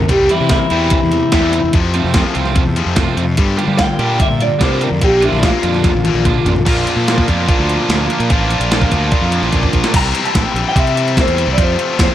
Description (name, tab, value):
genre	indie rock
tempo	146 BPM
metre	4/4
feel	straight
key	unclear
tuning	A4 = 440 Hz
part	twelve-string electric guitar	melody	0.0-6.6, 10.0-12.1 s	E4 to Bb5	-18 LUFS	left 1 dB	spring reverb
part	high-gain distorted guitar	riff	0.0-12.1 s	F2 to F4	-19 LUFS	left 6 dB	distortion
part	fuzz fingered electric bass	bass	0.0-12.1 s	A1 to G3	-18 LUFS	equal	overdrive
part	chorused pulse-width pad	sustained chords	0.1-12.1 s	F4 to Bb5	-27 LUFS	right 1 dB	none
part	gated 80s digital drum machine	drums	0.1-12.1 s	crash cymbal, hi-hat, kick drum, snare drum, toms	-16 LUFS	equal	gated reverb, gated reverb snare
part	distorted electric guitar	riff	0.3-9.9 s	Bb2 to G4	-22 LUFS	right 7 dB	overdrive, analog chorus, tape echo
room	moderate studio reverb, RT60 0.7 s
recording	none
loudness	-12 LUFS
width	side -12 dB against mid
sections	0.0-6.7 A section; 6.7-9.9 B section; 9.9-12.1 C section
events	clean electric guitar solo 0.0-6.7; drum fill 5.8-6.7, 9.5-9.9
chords	0.1 C7; 1.7 Fmaj7; 3.4 Gm7; 5.0 Bbmaj7; 9.9 C7; 11.6 Fmaj7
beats	| 0.09 0.50 0.92 1.33 | 1.74 2.15 2.56 2.97 | 3.38 3.79 4.20 4.61 | 5.02 5.43 5.84 6.25 | 6.66 7.07 7.48 7.89 | 8.30 8.71 9.12 9.53 | 9.94 10.35 10.76 11.17 | 11.57 11.98